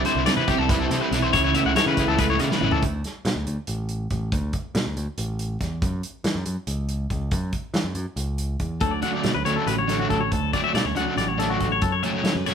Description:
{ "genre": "math rock and midwest emo", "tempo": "280 BPM (eighths)", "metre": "7/8", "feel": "straight", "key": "D major", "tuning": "A4 = 438 Hz", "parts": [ { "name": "twelve-string electric guitar", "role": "accompaniment", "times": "0.0-2.8, 8.8-12.5 s", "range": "D2 to A4", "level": "-28 LUFS", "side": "right 3 dB", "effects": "none" }, { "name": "twangy electric guitar", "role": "arpeggios", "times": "0.0-2.8, 8.8-12.5 s", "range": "F#4 to F#5", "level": "-24 LUFS", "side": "left 7 dB", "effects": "none" }, { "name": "overdriven semi-hollow guitar", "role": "riff", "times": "0.0-2.8, 9.0-12.5 s", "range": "C3 to E4", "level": "-25 LUFS", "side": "right 1 dB", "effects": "harmonic tremolo" }, { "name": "modern bright picked electric bass", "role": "bass", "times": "0.0-12.5 s", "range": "G#1 to E3", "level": "-27 LUFS", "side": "equal", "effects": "none" }, { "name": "loose indie drum kit", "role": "drums", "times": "0.1-12.5 s", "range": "hi-hat, kick drum, snare drum, toms", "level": "-27 LUFS", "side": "right 1 dB", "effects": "none" } ], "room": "moderate studio reverb, RT60 0.8 s", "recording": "band playing live in one room", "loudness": "-21 LUFS", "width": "side -8 dB against mid", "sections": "0.0-2.8 A section; 2.8-12.5 B section", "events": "drum fill 2.5-2.8", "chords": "0.0 Cmaj13; 1.3 Aadd9/C#; 2.8 D5; 5.8 F#5; 8.8 Dmaj7; 11.8 F#m7" }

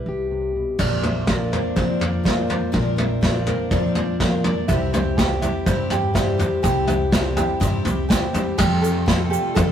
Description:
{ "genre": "indie folk with a building arrangement", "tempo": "123 BPM", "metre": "4/4", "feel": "straight", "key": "unclear", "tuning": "A4 = 439 Hz", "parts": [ { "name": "fingerpicked plugged-in steel-string acoustic guitar", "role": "accompaniment", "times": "0.0-9.7 s", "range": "Bb2 to E5", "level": "-26 LUFS", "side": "left 2 dB", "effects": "none" }, { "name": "upright bass", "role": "bass", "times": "0.1-9.7 s", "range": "Bb1 to G2", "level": "-26 LUFS", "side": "equal", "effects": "none" }, { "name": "picked twelve-string acoustic guitar", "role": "accompaniment", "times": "0.8-9.7 s", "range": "Bb2 to Bb4", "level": "-27 LUFS", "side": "left 2 dB", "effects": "none" }, { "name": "ukulele", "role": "arpeggios", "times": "0.8-9.7 s", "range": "G4 to E5", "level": "-27 LUFS", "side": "right 4 dB", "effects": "none" }, { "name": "vintage brush drum kit", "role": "drums", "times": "0.8-9.7 s", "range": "crash cymbal, kick drum, snare drum, toms", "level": "-21 LUFS", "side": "equal", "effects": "none" }, { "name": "egg shaker", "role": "percussion", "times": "4.7-9.7 s", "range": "none", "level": "-40 LUFS", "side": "right 6 dB", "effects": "none" }, { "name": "warm chamber string section", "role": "sustained chords", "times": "8.6-9.7 s", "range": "C3 to F4", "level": "-35 LUFS", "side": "equal", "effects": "none" } ], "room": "wet stone room reverb, RT60 1.2 s", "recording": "rough rehearsal-room recording", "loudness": "-18 LUFS", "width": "side -9 dB against mid", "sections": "0.8-8.6 A section; 8.6-9.7 B section", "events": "none", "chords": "0.0 Cmaj7; 0.8 Bbadd9; 4.7 C; 8.6 Fadd9" }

